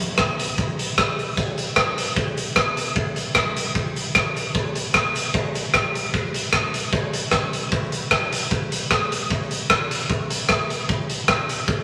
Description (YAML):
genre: ska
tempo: 151 BPM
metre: 4/4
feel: straight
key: none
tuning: none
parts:
  - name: raw garage drum kit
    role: drums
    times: 0.0-11.8 s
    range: hi-hat, kick drum, rim click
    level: -22 LUFS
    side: equal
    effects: none
  - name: cabasa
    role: percussion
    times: 0.0-11.8 s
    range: none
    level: -49 LUFS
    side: equal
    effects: none
room: moderate small room reverb, RT60 0.5 s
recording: none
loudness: -22 LUFS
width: mono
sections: 0.0-11.8 A section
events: none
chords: none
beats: 0.19 0.58 0.98 | 1.38 1.77 2.17 2.56 | 2.96 3.36 3.75 4.15 | 4.55 4.95 5.34 5.74 | 6.13 6.53 6.93 7.32 | 7.72 8.12 8.51 8.91 | 9.30 9.70 10.10 10.49 | 10.89 11.29 11.68